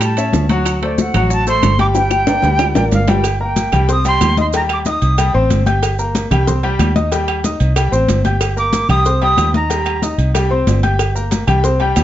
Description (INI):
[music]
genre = latin, salsa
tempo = 186 BPM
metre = 4/4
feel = straight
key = G minor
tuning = A4 = 439 Hz
[part]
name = jazz flute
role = melody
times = 0.0-5.3, 8.6-10.2 s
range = D5 to Eb6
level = -18 LUFS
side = right 2 dB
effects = none
[part]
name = clear grand piano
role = accompaniment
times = 0.0-12.0 s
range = F#3 to G6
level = -19 LUFS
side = left 3 dB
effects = none
[part]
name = fingered electric bass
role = bass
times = 0.0-12.0 s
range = G1 to A2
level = -17 LUFS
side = right 1 dB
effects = none
[part]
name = bongos and cowbell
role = percussion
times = 0.0-12.0 s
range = none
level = -23 LUFS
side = left 4 dB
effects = none
[part]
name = claves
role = percussion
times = 0.0-12.0 s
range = none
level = -27 LUFS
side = right 9 dB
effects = none
[part]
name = congas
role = percussion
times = 0.0-12.0 s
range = none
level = -21 LUFS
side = left 2 dB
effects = none
[part]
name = maracas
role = percussion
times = 0.0-12.0 s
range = none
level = -31 LUFS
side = right 9 dB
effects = none
[part]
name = timbales and agogo bells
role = percussion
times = 0.0-12.0 s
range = none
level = -25 LUFS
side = right 6 dB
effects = none
[sound]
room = moderate large studio reverb, RT60 0.9 s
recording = nothing above 7.8 kHz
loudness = -12 LUFS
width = side -12 dB against mid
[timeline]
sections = 0.0-3.2 A section; 3.2-12.0 B section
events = drum fill 2.0-3.2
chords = 0.0 A7; 0.7 D7; 2.0 Gm; 3.9 Cm; 5.2 C5; 5.8 Gm; 6.5 Cm; 7.8 C5; 8.4 Gm; 9.1 Cm; 10.3 C5; 11.0 Gm